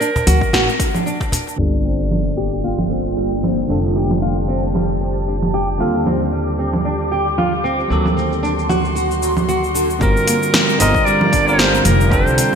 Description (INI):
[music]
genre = organic downtempo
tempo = 114 BPM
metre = 4/4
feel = swing 56% on 16ths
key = G minor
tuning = A4 = 443 Hz
[part]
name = clear clarinet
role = melody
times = 0.0-1.1, 10.0-12.6 s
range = Bb4 to Eb5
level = -18 LUFS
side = equal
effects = digital delay
[part]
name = nylon-string guitar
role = arpeggios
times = 0.0-12.6 s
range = D3 to G4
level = -22 LUFS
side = equal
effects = lush chorus, low-pass filter, ping-pong delay
[part]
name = deep house drum kit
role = drums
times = 0.0-12.6 s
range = congas, hi-hat, shaker, snare drum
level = -20 LUFS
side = right 2 dB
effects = overdrive, gated reverb
[part]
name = cajon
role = percussion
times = 0.2-1.6 s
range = none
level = -25 LUFS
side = equal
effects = none
[part]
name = upright bass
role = bass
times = 0.3-12.4 s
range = F1 to Eb2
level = -21 LUFS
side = left 1 dB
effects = sidechain pumping
[part]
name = electronic kick drum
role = drums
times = 0.4-1.3, 10.0-12.2 s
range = none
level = -20 LUFS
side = left 1 dB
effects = overdrive
[part]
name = bell-like tine electric piano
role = accompaniment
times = 1.6-12.6 s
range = D3 to Bb4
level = -23 LUFS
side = right 3 dB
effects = sidechain pumping, ping-pong delay
[part]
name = ethereal airy pad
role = sustained chords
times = 2.3-12.6 s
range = Bb3 to D6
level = -23 LUFS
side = equal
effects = ensemble chorus, built-in reverb, sidechain pumping
[part]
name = sub drop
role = sound effects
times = 1.6-3.7 s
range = none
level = -23 LUFS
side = left 1 dB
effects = none
[part]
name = quartz singing bowl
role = texture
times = 1.6-10.0 s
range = D4 to D5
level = -32 LUFS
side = left 4 dB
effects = none
[sound]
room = moderate lush hall reverb, RT60 2.2 s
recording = bright 1980s-style digital production, low-pass filter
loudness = -14 LUFS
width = side -6 dB against mid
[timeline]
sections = 0.0-1.6 A section; 1.6-10.0 B section; 10.0-12.6 C section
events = impact 1.6-3.7; filter sweep on nylon-string guitar 1.6-10.0; filter sweep on ambient pad 1.6-10.0; filter sweep 1.6-10.0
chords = 0.0 Daug; 1.6 Gm7; 3.7 Fadd9; 5.8 Ebmaj7; 7.9 D7b9b13; 10.0 Gm7